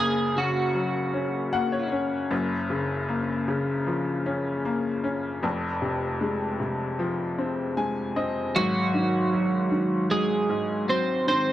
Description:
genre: pop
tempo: 77 BPM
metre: 4/4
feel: straight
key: unclear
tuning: A4 = 441 Hz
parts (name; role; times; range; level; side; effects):
- twelve-string electric guitar; melody; 0.0-1.9, 8.6-11.5 s; Gb3 to C5; -24 LUFS; right 2 dB; none
- bright upright piano; accompaniment; 0.0-11.5 s; F1 to Ab5; -26 LUFS; left 2 dB; none
room: light reverb, small room ambience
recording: dry, close 1970s-style studio recording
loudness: -24 LUFS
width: side -13 dB against mid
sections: 0.0-8.5 A section; 8.5-11.5 B section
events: upright piano fill 1.1-2.3, 7.4-8.5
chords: 0.0 Gb; 2.3 Gbmaj7; 5.4 Fm7; 8.5 Ab7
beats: 0.76 1.54 | 2.31 3.10 3.87 4.65 | 5.43 6.21 6.99 7.77 | 8.55 9.33 10.11 10.89

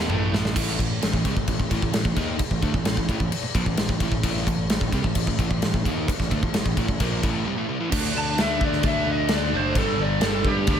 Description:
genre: hard rock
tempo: 130 BPM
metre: 4/4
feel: straight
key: unclear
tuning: A4 = 444 Hz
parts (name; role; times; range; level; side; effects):
- lead guitar through a small cranked amp; melody; 0.0-0.3, 8.2-10.8 s; G4 to A5; -26 LUFS; equal; overdrive
- high-gain distorted guitar; riff; 0.0-0.3, 7.9-10.8 s; G2 to D4; -32 LUFS; right 1 dB; distortion
- overdriven semi-hollow guitar; riff; 0.0-10.8 s; G2 to D#4; -29 LUFS; left 8 dB; none
- overdriven semi-hollow guitar; riff; 0.0-10.8 s; G2 to D#4; -29 LUFS; right 10 dB; none
- picked electric bass; bass; 0.0-10.8 s; F#1 to G2; -29 LUFS; equal; none
- big rock drum kit; drums; 0.1-10.8 s; crash cymbal, kick drum, snare drum, toms; -24 LUFS; equal; none
room: small room ambience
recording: none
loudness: -21 LUFS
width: side -8 dB against mid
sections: 0.6-7.9 A section; 7.9-10.8 B section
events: drum fill 0.0-0.6; break 7.5-7.9; lead electric guitar solo 7.9-10.8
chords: 0.0 A5; 0.6 Am; 7.9 D; 9.8 G5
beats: 0.09 | 0.55 1.01 1.48 1.94 | 2.40 2.86 3.32 3.78 | 4.25 4.71 5.17 5.63 | 6.09 6.55 7.01 7.47 | 7.93 8.39 8.85 9.31 | 9.77 10.23 10.69

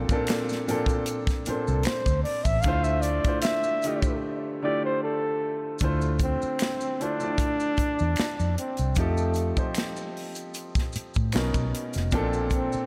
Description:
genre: R&B, neo-soul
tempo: 76 BPM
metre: 4/4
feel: swing 54% on 16ths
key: D minor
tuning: A4 = 441 Hz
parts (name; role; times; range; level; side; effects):
- breathy flugelhorn; melody; 0.0-12.9 s; A3 to F5; -31 LUFS; equal; diffuse ambient delay
- warm baby grand piano; accompaniment; 0.0-12.9 s; Bb2 to D5; -32 LUFS; equal; none
- vintage muted fingered electric bass; bass; 0.0-12.8 s; F1 to A2; -29 LUFS; equal; none
- tight funk drum kit; drums; 0.1-12.7 s; hi-hat, kick drum, snare drum; -31 LUFS; equal; none
- maracas and finger snaps; percussion; 0.1-12.9 s; none; -44 LUFS; equal; none
room: moderate lush hall reverb, RT60 2.5 s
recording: dreamy mix soaked in reverb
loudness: -26 LUFS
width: mono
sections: 0.0-5.8 A section; 5.8-12.9 B section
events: flugelhorn solo 0.0-5.8; break 4.2-5.8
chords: 0.0 Bbmaj7; 2.6 Dm9; 5.8 Dm7; 9.0 F9; 11.3 Bmaj7; 12.1 Bbmaj7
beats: 0.28 1.07 1.86 | 2.65 3.44 4.23 5.02 | 5.81 6.60 7.38 8.18 | 8.96 9.75 10.54 11.33 | 12.12

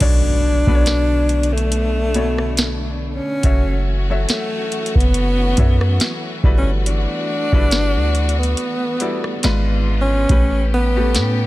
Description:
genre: contemporary R&B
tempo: 70 BPM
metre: 4/4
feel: swing 54% on 16ths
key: B minor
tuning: A4 = 440 Hz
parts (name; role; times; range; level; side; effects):
- warm alto saxophone; melody; 0.0-11.5 s; A3 to D4; -21 LUFS; equal; none
- clear baby grand piano; accompaniment; 0.0-11.5 s; G#2 to E5; -26 LUFS; left 3 dB; none
- warm studio string section; sustained chords; 0.0-11.5 s; D3 to G4; -27 LUFS; left 1 dB; sidechain pumping
- warm 808-style bass; bass; 0.0-11.5 s; F#1 to A2; -18 LUFS; equal; none
- booming analog drum machine; drums; 0.0-11.4 s; crash cymbal, hi-hat, kick drum, rim click, snare drum; -18 LUFS; equal; none
- impact; sound effects; 0.0-3.4 s; none; -31 LUFS; equal; none
room: small room reverb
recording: none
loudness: -15 LUFS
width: side -17 dB against mid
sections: 0.0-11.5 A section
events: impact 0.0-3.4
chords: 0.0 Bm9; 3.4 F#m7; 6.4 Gmaj13; 9.4 G#dim7; 10.3 A9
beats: | 0.01 0.86 1.72 2.58 | 3.44 4.29 5.15 6.01 | 6.86 7.72 8.58 9.44 | 10.29 11.15

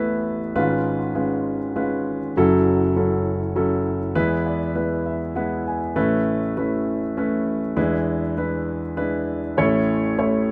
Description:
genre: folk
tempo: 100 BPM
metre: 3/4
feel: straight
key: A major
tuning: A4 = 441 Hz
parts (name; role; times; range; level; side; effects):
- warm concert grand piano; solo; 0.0-10.5 s; F#1 to G#5; -22 LUFS; equal; none
room: moderate studio reverb, RT60 0.5 s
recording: none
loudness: -22 LUFS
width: mono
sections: 0.0-6.0 A section; 6.0-10.5 B section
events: none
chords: 0.0 Asus2; 0.5 C#7/G#; 2.3 F#m7; 4.1 E; 6.0 Aadd9; 7.8 E7; 9.6 A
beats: | 0.55 1.15 1.75 | 2.34 2.94 3.54 | 4.14 4.75 5.35 | 5.96 6.56 7.16 | 7.76 8.37 8.97 | 9.57 10.17

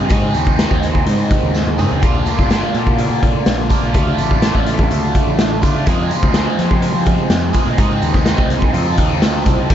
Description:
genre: psychedelic rock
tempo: 125 BPM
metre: 4/4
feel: straight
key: unclear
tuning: A4 = 438 Hz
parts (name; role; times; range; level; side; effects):
- biting overdriven guitar; riff; 0.0-9.7 s; F2 to A4; -19 LUFS; right 1 dB; phaser, tape echo
- fuzz fingered electric bass; bass; 0.0-9.7 s; G1 to F3; -20 LUFS; equal; overdrive
- raw garage drum kit; drums; 0.1-9.7 s; crash cymbal, hi-hat, kick drum, snare drum, toms; -16 LUFS; equal; none
- tambourine; percussion; 0.1-9.6 s; none; -40 LUFS; right 9 dB; none
room: light reverb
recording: echo-heavy mix, nothing above 7.7 kHz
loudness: -13 LUFS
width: side -10 dB against mid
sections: 0.0-9.7 A section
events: drum fill 1.6-2.0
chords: 0.1 Ab; 2.0 Bb; 3.9 Dm; 5.9 Fm; 7.8 Ab; 8.7 F7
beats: | 0.11 0.59 1.07 1.55 | 2.03 2.51 2.99 3.47 | 3.95 4.43 4.91 5.39 | 5.87 6.35 6.83 7.31 | 7.79 8.27 8.75 9.23 | 9.71

